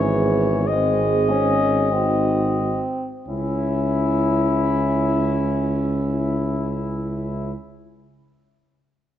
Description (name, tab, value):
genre	classical, hymn-like piece for brass band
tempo	43-52 BPM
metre	4/4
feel	rubato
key	C# minor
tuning	A4 = 439 Hz
part	dark trumpet section	melody	0.0-7.5 s	E4 to D#5	-26 LUFS	left 7 dB	none
part	mellow French horn section	second line	0.0-7.5 s	E4 to G#4	-28 LUFS	right 5 dB	none
part	clear euphonium	accompaniment	0.0-7.5 s	B3 to E4	-30 LUFS	left 2 dB	none
part	clear trombone	accompaniment	0.0-7.5 s	E3 to C#4	-24 LUFS	right 1 dB	none
part	mellow tuba	bass	0.0-7.5 s	G#1 to C#2	-24 LUFS	equal	none
room	moderate scoring stage reverb, RT60 1.8 s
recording	nothing above 8.0 kHz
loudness	-19 LUFS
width	side -11 dB against mid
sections	0.0-3.3 A section; 3.3-8.6 B section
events	slowing down 0.0-3.3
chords	0.0 C#m/G#; 0.7 G#7; 3.3 C#m